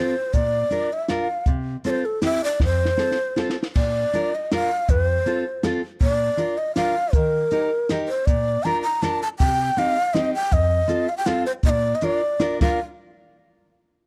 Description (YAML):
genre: alpine folk, alpine dance band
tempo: 160 BPM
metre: 3/4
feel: rubato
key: F major, Bb major from 3.8 s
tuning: A4 = 439 Hz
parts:
  - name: breathy mellow long shakuhachi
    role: melody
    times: 0.0-12.8 s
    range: A4 to Bb5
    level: -25 LUFS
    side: equal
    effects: none
  - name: fingerpicked steel-string acoustic guitar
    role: accompaniment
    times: 0.0-12.8 s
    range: F2 to Bb4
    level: -27 LUFS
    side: equal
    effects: none
  - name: compact cocktail drum kit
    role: drums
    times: 0.3-12.7 s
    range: crash cymbal, hi-hat, kick drum, snare drum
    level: -24 LUFS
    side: equal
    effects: none
room: small room ambience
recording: dry, close 1970s-style studio recording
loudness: -22 LUFS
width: mono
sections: 0.0-3.8 A section; 3.8-12.8 B section; 12.8-13.9 C section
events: drum fill 2.6-3.8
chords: 0.3 Bb; 1.5 F/C; 2.2 Cadd9; 2.6 F; 3.8 Bb; 4.9 F; 6.0 Bb; 7.1 Eb; 8.3 Bb; 9.4 Cm; 10.5 F7; 11.6 Bb; 12.8 N.C.